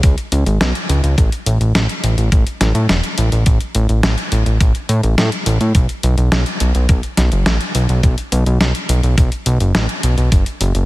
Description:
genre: synthwave.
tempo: 105 BPM.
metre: 4/4.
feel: straight.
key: unclear.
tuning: A4 = 443 Hz.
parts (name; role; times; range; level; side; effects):
fat analog bass; bass; 0.0-10.9 s; E1 to A2; -14 LUFS; equal; sidechain pumping.
detuned 8-bit digital drum machine; drums; 0.0-10.9 s; hi-hat, snare drum; -20 LUFS; equal; slapback echo.
electronic kick drum; drums; 0.0-10.4 s; none; -13 LUFS; equal; none.
room: light reverb, digital ambience.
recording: none.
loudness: -13 LUFS.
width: side -18 dB against mid.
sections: 0.0-10.9 A section.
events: none.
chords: none.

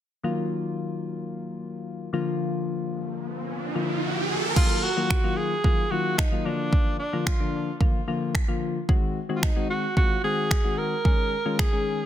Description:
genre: dance-pop.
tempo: 111 BPM.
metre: 4/4.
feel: straight.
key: Eb minor.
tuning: A4 = 440 Hz.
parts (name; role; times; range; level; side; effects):
soft electric-piano-like synth keys; accompaniment; 0.2-12.0 s; D3 to Ab4; -28 LUFS; left 4 dB; chorus.
riser; sound effects; 3.0-4.6 s; none; -30 LUFS; right 3 dB; none.
warm alto saxophone; melody; 4.6-12.1 s; D4 to Bb4; -28 LUFS; right 2 dB; digital delay.
deep house drum kit; drums; 4.6-11.7 s; crash cymbal, finger snaps, kick drum; -22 LUFS; right 1 dB; soft clipping on snare.
room: light reverb, digital ambience.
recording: dense, heavily limited modern master.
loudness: -23 LUFS.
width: side -11 dB against mid.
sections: 0.2-4.6 A section; 4.6-12.1 B section.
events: riser 3.0-4.6.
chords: 0.2 Ebmadd9; 2.1 Bb; 4.6 Ebmadd9; 6.5 Bb; 8.9 Ab7; 11.1 Dbsus2.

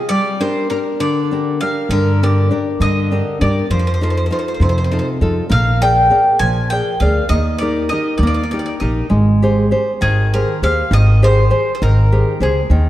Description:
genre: italian folk, Italian serenade.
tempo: 67 BPM (dotted quarters).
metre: 6/8.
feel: straight.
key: Eb major, Ab major from 9.1 s.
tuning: A4 = 440 Hz.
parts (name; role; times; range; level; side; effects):
bowl-back mandolin; melody; 0.0-12.7 s; Ab4 to Ab5; -19 LUFS; equal; none.
nylon-string guitar; accompaniment; 0.0-12.9 s; C3 to D5; -18 LUFS; left 1 dB; none.
upright bass; bass; 1.9-12.9 s; Ab1 to G2; -15 LUFS; equal; none.
room: moderate scoring stage reverb, RT60 1.9 s.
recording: dark, warm production.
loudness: -13 LUFS.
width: side -14 dB against mid.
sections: 0.0-9.1 A section; 9.1-12.9 B section.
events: none.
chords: 0.1 Gm; 3.7 F7; 5.5 Bb7; 7.3 Eb; 9.1 Abmaj7.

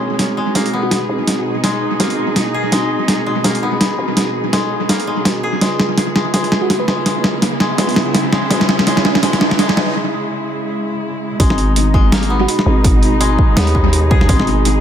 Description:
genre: half-time drum and bass.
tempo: 166 BPM.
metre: 4/4.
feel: swing 57% on 16ths, half-time.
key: G# minor.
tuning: A4 = 441 Hz.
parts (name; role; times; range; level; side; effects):
muted studio cello section; sustained chords; 0.0-14.8 s; B2 to G#4; -21 LUFS; right 1 dB; sidechain pumping.
koto; arpeggios; 0.0-14.8 s; G#3 to G#4; -22 LUFS; left 3 dB; dub echo.
growling 808-style bass; bass; 0.0-14.8 s; G#1 to D#2; -19 LUFS; equal; high-pass filter.
riser; sound effects; 4.3-10.0 s; none; -25 LUFS; right 4 dB; none.
boom bap sampler-style drum kit; drums; 0.2-14.7 s; hi-hat, snare drum; -17 LUFS; equal; overdrive, analog delay.
bell-like FM electric piano; melody; 0.8-1.0, 6.6-7.3, 12.4-12.5 s; F#4 to B4; -26 LUFS; right 2 dB; chorus, tremolo, dub echo.
electronic kick drum; drums; 11.4-14.4 s; none; -13 LUFS; equal; none.
room: light reverb, digital ambience.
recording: echo-heavy mix.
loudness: -13 LUFS.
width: side -9 dB against mid.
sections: 0.0-11.4 A section; 11.4-14.8 B section.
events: build-up 0.0-11.4; drum fill 0.0-10.0; riser 4.3-10.0; break 10.0-11.4; drop 11.4-14.8.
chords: 0.0 G#m; 5.6 C#m; 11.4 G#m.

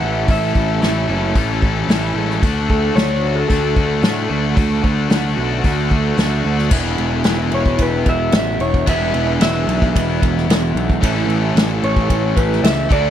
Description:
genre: indie rock.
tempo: 112 BPM.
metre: 4/4.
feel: straight.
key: A major.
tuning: A4 = 436 Hz.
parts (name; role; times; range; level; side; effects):
electric guitar through a small old amp; melody; 0.0-13.1 s; A4 to F#5; -22 LUFS; left 1 dB; slapback echo.
crunchy overdriven guitar; riff; 0.0-13.1 s; E2 to F#4; -22 LUFS; right 9 dB; ensemble chorus, slapback echo.
distorted electric guitar; riff; 0.0-13.1 s; E3 to A4; -22 LUFS; left 11 dB; overdrive.
fuzz picked electric bass; bass; 0.0-13.1 s; E1 to A2; -20 LUFS; equal; overdrive.
unplugged drum kit; drums; 0.3-13.0 s; crash cymbal, hi-hat, kick drum, ride cymbal, snare drum; -18 LUFS; equal; none.
room: little or no reverb.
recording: none.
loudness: -14 LUFS.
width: side -10 dB against mid.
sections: 0.0-6.7 A section; 6.7-13.1 B section.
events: none.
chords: 0.0 A; 2.4 D; 6.7 E7(no3); 11.0 A.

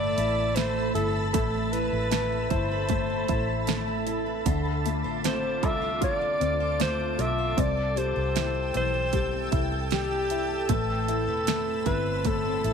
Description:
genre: pop ballad.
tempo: 77 BPM.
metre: 4/4.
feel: straight.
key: A minor.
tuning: A4 = 441 Hz.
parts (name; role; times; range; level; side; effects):
breathy alto saxophone; melody; 0.0-12.7 s; G4 to E5; -29 LUFS; left 1 dB; slapback echo.
felt-muted upright piano; accompaniment; 0.0-12.7 s; D3 to A4; -32 LUFS; left 12 dB; none.
shimmering ambient pad; sustained chords; 0.0-12.7 s; C4 to E6; -33 LUFS; right 1 dB; chorus, built-in reverb.
picked steel-string acoustic guitar; arpeggios; 0.0-12.7 s; A2 to C5; -36 LUFS; right 12 dB; none.
vintage muted fingered electric bass; bass; 0.0-12.7 s; E1 to D2; -31 LUFS; equal; none.
pop drum kit; drums; 0.2-12.7 s; hi-hat, kick drum, snare drum; -30 LUFS; right 5 dB; none.
room: little or no reverb.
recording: 1960s-style stereo with parts hard left and right.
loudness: -24 LUFS.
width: side -6 dB against mid.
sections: 0.0-12.7 A section.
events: none.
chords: 0.0 Amadd9; 4.5 Dm7; 7.6 C6; 10.7 Amadd9.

